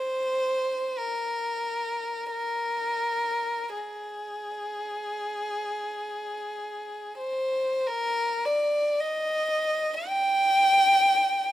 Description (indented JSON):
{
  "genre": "classical, free, expressive piece for unaccompanied violin",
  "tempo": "free time",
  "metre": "none",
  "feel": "none",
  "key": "Ab major",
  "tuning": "A4 = 440 Hz",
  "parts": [
    { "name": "rich violin", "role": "solo", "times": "0.0-11.5 s", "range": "Ab4 to G5", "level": "-25 LUFS", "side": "equal", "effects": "none" }
  ],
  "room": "light reverb",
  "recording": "close, detailed microphones",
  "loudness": "-24 LUFS",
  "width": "side -13 dB against mid",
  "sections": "0.0-7.9 A section; 7.9-11.5 B section",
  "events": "none",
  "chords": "none"
}